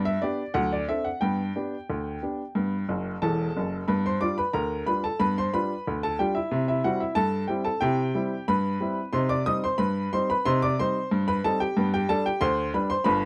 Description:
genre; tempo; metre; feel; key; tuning
ragtime piano; 91 BPM; 2/4; straight; G major; A4 = 440 Hz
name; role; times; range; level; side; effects
clear upright piano; solo; 0.0-13.3 s; E1 to Eb6; -26 LUFS; equal; none
room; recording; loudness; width
light reverb; dry, close 1970s-style studio recording; -26 LUFS; mono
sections
0.0-3.9 A section; 3.9-13.3 B section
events
upright piano fill 2.9-3.9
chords
0.0 G; 0.6 D7; 1.2 G; 3.9 G7; 6.5 C; 9.1 Cm; 11.8 G

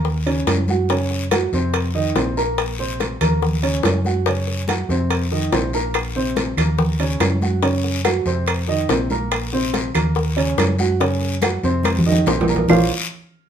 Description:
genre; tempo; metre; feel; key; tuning
Afro-Cuban jazz; 142 BPM; 4/4; straight; Bb minor; A4 = 440 Hz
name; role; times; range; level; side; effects
dark upright piano; accompaniment; 0.0-12.9 s; C3 to Bb5; -22 LUFS; right 2 dB; none
hollow-body short-scale fingered electric bass; bass; 0.0-12.9 s; Bb1 to Gb2; -22 LUFS; equal; none
bongos; percussion; 0.0-12.8 s; none; -24 LUFS; left 6 dB; none
congas; percussion; 0.1-12.8 s; none; -24 LUFS; equal; none
guiro; percussion; 0.1-12.8 s; none; -31 LUFS; left 5 dB; none
timbales; percussion; 0.3-12.8 s; none; -25 LUFS; right 4 dB; none
claves; percussion; 5.9-12.8 s; none; -29 LUFS; right 3 dB; none
room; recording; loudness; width
moderate studio reverb, RT60 0.6 s; minimal, uncompressed stereo recording; -17 LUFS; side -8 dB against mid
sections
0.0-12.7 A section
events
drum fill 11.8-12.7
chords
0.1 Ebm7; 0.9 Gb5; 1.7 F5; 2.6 Bbsus2; 3.4 Ebm7; 4.3 Gb5; 5.1 F5; 5.9 Bbsus2; 6.8 Ebm7; 7.6 Gb5; 8.5 F5; 9.3 Bbsus2; 10.2 Ebm7; 11.0 Gb5; 11.8 F5; 12.7 Bbmadd9

